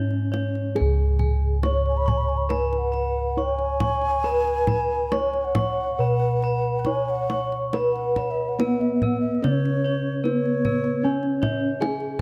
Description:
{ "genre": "Javanese gamelan", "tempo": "70 BPM", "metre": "4/4", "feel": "uneven beats", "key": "C# slendro", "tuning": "A4 = 440 Hz", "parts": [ { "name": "gamelan-type bronze metallophone", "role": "melody", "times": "0.0-12.2 s", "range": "B3-25c to C#5", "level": "-27 LUFS", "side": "equal", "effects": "none" }, { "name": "mellow xiao", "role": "second line", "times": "0.0-11.7 s", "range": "C#5 to B5", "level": "-32 LUFS", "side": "equal", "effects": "none" }, { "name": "gamelan-type bossed gongs", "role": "arpeggios", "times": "0.0-0.4, 7.7-12.2 s", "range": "B4-25c to G#5", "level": "-37 LUFS", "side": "equal", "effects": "none" }, { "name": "gamelan-type bronze metallophone", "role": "arpeggios", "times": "0.0-12.2 s", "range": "B4-25c to C#6", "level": "-34 LUFS", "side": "equal", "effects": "none" }, { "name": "gamelan-type bossed gongs", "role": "bass", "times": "0.0-12.2 s", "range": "C#2 to B4-25c", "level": "-28 LUFS", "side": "equal", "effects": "none" }, { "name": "kendang", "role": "percussion", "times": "0.1-12.1 s", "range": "none", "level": "-30 LUFS", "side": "equal", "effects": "none" } ], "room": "light reverb", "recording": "close, detailed microphones", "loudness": "-23 LUFS", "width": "mono", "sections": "0.8-12.2 A section", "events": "none", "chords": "none" }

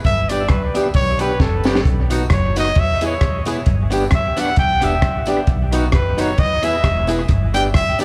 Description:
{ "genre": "ska", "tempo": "133 BPM", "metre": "4/4", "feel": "swing 56% on 8ths", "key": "unclear", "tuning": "A4 = 440 Hz", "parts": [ { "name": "compact cocktail drum kit", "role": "drums", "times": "0.0-8.0 s", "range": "hi-hat, kick drum, rim click, snare drum", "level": "-20 LUFS", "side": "equal", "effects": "none" }, { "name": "warm trumpet", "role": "melody", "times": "0.1-8.0 s", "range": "A4 to G5", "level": "-23 LUFS", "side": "equal", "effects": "dub echo" }, { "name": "upright bass", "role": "bass", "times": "0.1-8.0 s", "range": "E1 to E2", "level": "-24 LUFS", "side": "equal", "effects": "none" }, { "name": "archtop guitar, miked and amplified", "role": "accompaniment", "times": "0.3-8.0 s", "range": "B3 to G#4", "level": "-27 LUFS", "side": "equal", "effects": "dub echo, slapback echo" }, { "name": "tonewheel organ", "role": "stabs", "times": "0.3-8.0 s", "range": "D4 to B4", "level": "-28 LUFS", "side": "equal", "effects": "overdrive, slow rotary speaker, slapback echo" }, { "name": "tambourine", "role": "percussion", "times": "0.3-8.0 s", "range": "none", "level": "-42 LUFS", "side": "equal", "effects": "none" } ], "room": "light reverb", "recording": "live gig heard through the venue's PA, club reverb", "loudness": "-17 LUFS", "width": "mono", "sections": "0.0-8.0 A section", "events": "trumpet solo 0.0-8.0; drum fill 1.4-1.9", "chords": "0.1 G; 1.9 B; 2.8 E; 3.7 G; 5.5 B; 6.4 E; 7.3 G" }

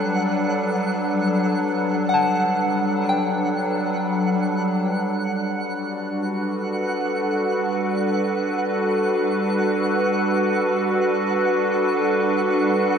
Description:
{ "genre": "ambient", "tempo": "free time", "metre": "none", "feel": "none", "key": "G major", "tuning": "A4 = 440 Hz", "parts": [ { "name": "evolving wavetable pad", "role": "sustained chords", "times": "0.0-13.0 s", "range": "F#3 to B4", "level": "-20 LUFS", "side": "equal", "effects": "chorus, built-in reverb" }, { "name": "soft synth bell", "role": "arpeggios", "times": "0.0-4.7 s", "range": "F#5 to A5", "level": "-26 LUFS", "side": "left 2 dB", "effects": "chorus, phaser, diffuse ambient delay" }, { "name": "twinkling granular texture", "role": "texture", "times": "0.0-13.0 s", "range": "F#5", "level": "-29 LUFS", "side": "right 3 dB", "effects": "built-in reverb" } ], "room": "wet cathedral reverb, RT60 5.6 s", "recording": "nothing above 10.9 kHz", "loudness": "-19 LUFS", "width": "side -7 dB against mid", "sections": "0.0-4.7 A section; 4.7-13.0 B section", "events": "none", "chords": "0.0 Gmaj7" }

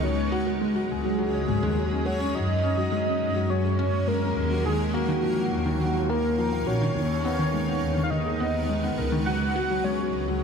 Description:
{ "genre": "piano and strings electronica", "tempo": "104 BPM", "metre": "4/4", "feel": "straight", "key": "F# major", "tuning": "A4 = 445 Hz", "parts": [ { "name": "warm velvety synth lead", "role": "melody", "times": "0.0-10.4 s", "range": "F#4 to F#5", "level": "-29 LUFS", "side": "right 2 dB", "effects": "chorus, tremolo" }, { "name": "granular cloud pad", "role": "sustained chords", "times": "0.0-10.4 s", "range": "F#3 to E#5", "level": "-31 LUFS", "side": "right 1 dB", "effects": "built-in reverb" }, { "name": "felt-muted upright piano", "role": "riff", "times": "0.0-10.4 s", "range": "D#3 to F#5", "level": "-27 LUFS", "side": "left 3 dB", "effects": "none" }, { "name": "warm studio double bass section", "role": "bass", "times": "0.0-10.4 s", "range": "G#1 to F#2", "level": "-29 LUFS", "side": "equal", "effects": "none" } ], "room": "moderate scoring stage reverb, RT60 1.8 s, studio reverb", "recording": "none", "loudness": "-23 LUFS", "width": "side -6 dB against mid", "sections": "0.0-10.4 A section", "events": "none", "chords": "0.0 C#sus4; 2.3 F#add9; 4.7 D#madd9; 7.0 G#madd9/D#; 9.3 C#sus4" }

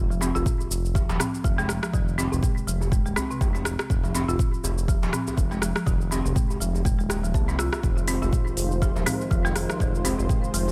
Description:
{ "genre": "afro house", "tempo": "122 BPM", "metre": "4/4", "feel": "swing 57% on 16ths", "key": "F minor", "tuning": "A4 = 440 Hz", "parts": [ { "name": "smooth synth bass", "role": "bass", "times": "0.0-10.7 s", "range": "Eb1 to C2", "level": "-30 LUFS", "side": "equal", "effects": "sidechain pumping" }, { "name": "folk marimba with medium hard mallets", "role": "arpeggios", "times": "0.1-10.6 s", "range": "C3 to F4", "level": "-32 LUFS", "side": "equal", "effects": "sidechain pumping, digital delay" }, { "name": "afro-pop drum kit", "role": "drums", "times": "0.1-10.7 s", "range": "hi-hat, rim click, shaker, toms", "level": "-33 LUFS", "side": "equal", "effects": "small room ambience" }, { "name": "djembe", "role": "percussion", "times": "0.2-10.7 s", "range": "none", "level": "-37 LUFS", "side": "equal", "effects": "none" }, { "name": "electronic kick drum", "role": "drums", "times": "0.5-10.4 s", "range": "none", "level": "-26 LUFS", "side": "equal", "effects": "small room ambience" }, { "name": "warm analog pad", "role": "sustained chords", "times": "7.8-10.7 s", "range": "Eb3 to C5", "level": "-33 LUFS", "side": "equal", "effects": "chorus, sidechain pumping" } ], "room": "digital ambience", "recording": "none", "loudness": "-25 LUFS", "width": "mono", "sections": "0.0-10.7 A section", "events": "none", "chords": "0.0 Fm7" }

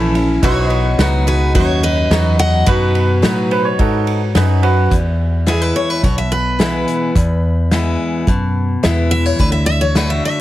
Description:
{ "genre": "honky-tonk and classic country", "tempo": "107 BPM", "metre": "4/4", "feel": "straight", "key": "E major", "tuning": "A4 = 443 Hz", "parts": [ { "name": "picked steel-string acoustic guitar", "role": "accompaniment", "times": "0.0-10.4 s", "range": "E2 to F#4", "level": "-20 LUFS", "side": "left 2 dB", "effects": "none" }, { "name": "warm concert grand piano", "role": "accompaniment", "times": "0.0-4.8 s", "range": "C#4 to B4", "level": "-24 LUFS", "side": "right 6 dB", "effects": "none" }, { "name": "pedal steel guitar", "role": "sustained chords", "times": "0.0-4.9 s", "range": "A3 to D#5", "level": "-26 LUFS", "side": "left 2 dB", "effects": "none" }, { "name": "vintage muted fingered electric bass", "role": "bass", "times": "0.0-10.2 s", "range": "A#1 to A2", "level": "-16 LUFS", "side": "equal", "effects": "none" }, { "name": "unplugged drum kit", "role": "drums", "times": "0.1-10.1 s", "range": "hi-hat, kick drum, ride cymbal, snare drum", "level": "-19 LUFS", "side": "equal", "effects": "none" }, { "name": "picked steel-string acoustic guitar", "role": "melody", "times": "0.4-10.4 s", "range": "F#4 to F#5", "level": "-19 LUFS", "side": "left 1 dB", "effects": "none" }, { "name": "bright upright piano", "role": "second line", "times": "3.5-4.9 s", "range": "F#4 to C#5", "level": "-20 LUFS", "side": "right 4 dB", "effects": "none" } ], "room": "little or no reverb", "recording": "heavily compressed radio sound", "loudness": "-13 LUFS", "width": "side -14 dB against mid", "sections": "0.0-4.9 A section; 4.9-10.4 B section", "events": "steel-string acoustic guitar solo 4.9-10.4", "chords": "0.4 B; 4.9 E; 9.4 D" }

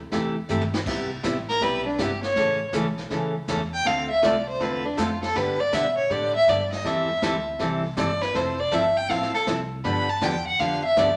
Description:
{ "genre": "country, western swing", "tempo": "160 BPM", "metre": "4/4", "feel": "swing 66% on 8ths", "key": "C major", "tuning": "A4 = 440 Hz", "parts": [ { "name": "upright bass", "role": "bass", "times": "0.0-11.2 s", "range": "F1 to B2", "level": "-38 LUFS", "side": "equal", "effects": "none" }, { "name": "picked steel-string acoustic guitar", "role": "accompaniment", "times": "0.1-11.1 s", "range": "C3 to A4", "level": "-29 LUFS", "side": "equal", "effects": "none" }, { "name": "vintage brush drum kit", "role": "drums", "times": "0.1-11.2 s", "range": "brushed snare drum, crash cymbal, hi-hat, kick drum, snare drum, toms", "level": "-36 LUFS", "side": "equal", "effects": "none" }, { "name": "warm fiddle", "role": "melody", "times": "1.5-11.2 s", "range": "D4 to B5", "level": "-25 LUFS", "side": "equal", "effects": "none" } ], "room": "wet studio reverb, RT60 0.9 s", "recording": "none", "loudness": "-24 LUFS", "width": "mono", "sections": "0.9-11.2 A section", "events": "drum fill 0.5-0.9; fiddle solo 0.9-11.2", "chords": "0.0 C6; 0.9 Cmaj7; 2.4 A; 3.9 Dm7; 5.4 G; 6.8 Am7; 8.3 Fmaj7; 9.8 G7" }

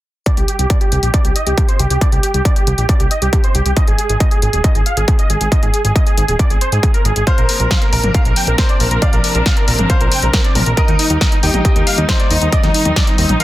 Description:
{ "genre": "uplifting trance", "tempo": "137 BPM", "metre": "4/4", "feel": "straight", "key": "C minor", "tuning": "A4 = 442 Hz", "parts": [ { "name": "dense compressed supersaw", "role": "melody", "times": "0.3-13.4 s", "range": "Eb4 to G5", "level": "-19 LUFS", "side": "right 1 dB", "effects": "cassette tape, sidechain pumping, low-pass filter, dub echo" }, { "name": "electronic kick drum", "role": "drums", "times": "0.3-13.1 s", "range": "none", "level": "-14 LUFS", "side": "equal", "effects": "distortion, overdrive" }, { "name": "punchy analog drum machine", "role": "drums", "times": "0.3-13.4 s", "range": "hi-hat, snare drum, toms", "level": "-20 LUFS", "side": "left 2 dB", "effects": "none" }, { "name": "fat analog bass", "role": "bass", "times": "0.4-13.4 s", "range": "Eb1 to Ab2", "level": "-17 LUFS", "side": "equal", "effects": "sidechain pumping" }, { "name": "bright grand piano", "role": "second line", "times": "7.3-13.4 s", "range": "G4 to F5", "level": "-23 LUFS", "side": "equal", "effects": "dub echo" }, { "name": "dark studio string section", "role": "sustained chords", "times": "7.3-13.4 s", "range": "C3 to Eb4", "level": "-23 LUFS", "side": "left 1 dB", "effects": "sidechain pumping" } ], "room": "digital ambience", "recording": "dense, heavily limited modern master", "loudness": "-12 LUFS", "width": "side -15 dB against mid", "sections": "0.3-13.4 A section", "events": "none", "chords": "0.3 C5; 3.8 Ab5; 7.3 Bbadd9; 10.8 Eb" }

